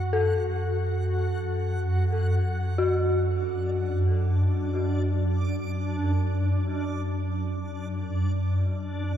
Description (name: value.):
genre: dark ambient drone.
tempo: free time.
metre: none.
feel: none.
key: unclear.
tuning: A4 = 439 Hz.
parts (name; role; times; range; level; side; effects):
dark detuned synth bell; arpeggios; 0.0-9.2 s; F#4 to A4; -31 LUFS; left 2 dB; chorus, diffuse ambient delay, shimmer reverb.
deep rumbling drone; drone; 0.0-9.2 s; F#2; -25 LUFS; equal; built-in reverb, phaser.
backwards swelling texture; texture; 0.0-9.2 s; D4 to D6; -33 LUFS; equal; built-in reverb, shimmer reverb.
room: wet cathedral reverb, RT60 5.4 s.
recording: dark, warm production.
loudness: -24 LUFS.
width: side -10 dB against mid.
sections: 0.0-9.2 A section.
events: none.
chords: 0.0 F#m; 2.3 D/F#.